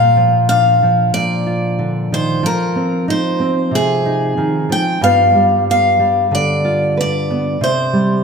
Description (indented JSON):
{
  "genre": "folk",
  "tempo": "93 BPM",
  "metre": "4/4",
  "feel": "straight",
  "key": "unclear",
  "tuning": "A4 = 440 Hz",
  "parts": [
    { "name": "picked steel-string acoustic guitar", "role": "melody", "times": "0.0-8.2 s", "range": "Ab4 to G5", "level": "-15 LUFS", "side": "left 1 dB", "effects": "none" },
    { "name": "nylon-string guitar", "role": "accompaniment", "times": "0.0-8.2 s", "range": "G2 to B4", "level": "-16 LUFS", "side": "right 1 dB", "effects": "none" }
  ],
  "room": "wet concert hall reverb, RT60 1.9 s",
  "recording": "none",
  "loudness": "-13 LUFS",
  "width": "side -5 dB against mid",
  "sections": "0.0-8.2 A section",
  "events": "none",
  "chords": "0.0 Bb; 2.4 Fm7; 5.0 G7; 7.6 C5"
}